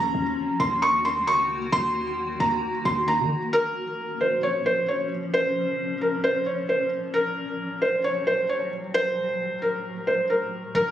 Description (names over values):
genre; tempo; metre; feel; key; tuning
hip hop; 133 BPM; 4/4; half-time; unclear; A4 = 437 Hz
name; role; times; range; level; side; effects
felt-muted upright piano; melody; 0.0-10.9 s; Bb4 to Db6; -23 LUFS; equal; ping-pong delay
granular cloud pad; sustained chords; 0.0-10.7 s; Eb2 to Gb4; -32 LUFS; left 2 dB; built-in reverb
long sustained 808-style bass; bass; 0.0-3.3, 10.7-10.9 s; Bb1 to Eb3; -31 LUFS; equal; none
room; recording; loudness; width
light reverb, small room ambience; recorded on a phone in the room, studio reverb; -22 LUFS; side -11 dB against mid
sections
0.0-3.5 A section; 3.5-10.7 B section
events
none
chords
0.0 Ebm; 3.5 Bbm; 7.1 Ebm